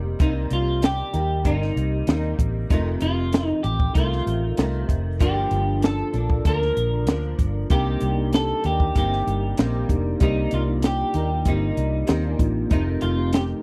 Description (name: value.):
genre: indie pop, bedroom pop.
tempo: 96 BPM.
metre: 4/4.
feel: straight.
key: C dorian.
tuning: A4 = 440 Hz.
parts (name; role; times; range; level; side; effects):
flamenco guitar; accompaniment; 0.0-13.6 s; F2 to Eb4; -31 LUFS; equal; ensemble chorus, warbly pitch drift.
vintage muted fingered electric bass; bass; 0.0-13.5 s; F1 to Eb2; -27 LUFS; equal; none.
electric guitar through a small old amp; melody; 0.2-13.4 s; Eb4 to Bb4; -29 LUFS; equal; lush chorus, slapback echo.
compact cocktail drum kit; drums; 0.2-13.5 s; hi-hat, kick drum, snare drum; -24 LUFS; equal; none.
mellow tine electric piano; accompaniment; 7.7-13.6 s; A3 to D5; -31 LUFS; equal; cassette tape.
room: small room ambience.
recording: dry, close 1970s-style studio recording.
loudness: -22 LUFS.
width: mono.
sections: 0.0-13.6 A section.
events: none.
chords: 0.0 Cm7; 2.7 F7; 5.2 Gm7; 7.7 Cm7; 12.7 F7.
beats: | 0.20 0.83 1.45 2.08 | 2.70 3.33 3.95 4.58 | 5.20 5.83 6.46 7.08 | 7.71 8.33 8.96 9.58 | 10.21 10.83 11.46 12.08 | 12.71 13.34.